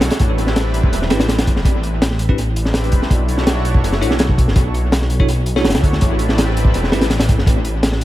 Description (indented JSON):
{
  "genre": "drum and bass, jungle",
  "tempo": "165 BPM",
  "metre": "4/4",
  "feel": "straight",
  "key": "A dorian",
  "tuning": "A4 = 440 Hz",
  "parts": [
    { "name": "lush unison pad", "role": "sustained chords", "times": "0.0-7.6 s", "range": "G3 to C#5", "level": "-25 LUFS", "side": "equal", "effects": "chorus" },
    { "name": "detuned saw bass", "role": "bass", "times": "0.0-8.0 s", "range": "E1 to D2", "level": "-18 LUFS", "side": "equal", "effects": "none" },
    { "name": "crunchy breakbeat drum kit", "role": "drums", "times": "0.0-8.0 s", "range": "hi-hat, kick drum, snare drum", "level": "-16 LUFS", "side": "equal", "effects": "dub echo" },
    { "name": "bell-like tine electric piano", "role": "stabs", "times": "1.1-7.0 s", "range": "C4 to C#5", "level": "-25 LUFS", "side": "right 1 dB", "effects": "fast stereo tremolo, dub echo" }
  ],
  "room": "light reverb, small room ambience",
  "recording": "echo-heavy mix",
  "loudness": "-13 LUFS",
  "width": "side -15 dB against mid",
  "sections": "0.0-8.0 A section",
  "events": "none",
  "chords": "0.2 Am11; 3.1 Bm11; 6.0 Am11",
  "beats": "| 0.20 0.56 0.93 1.29 | 1.65 2.02 2.38 2.74 | 3.11 3.47 3.83 4.20 | 4.56 4.92 5.29 5.65 | 6.01 6.38 6.74 7.11 | 7.47 7.83"
}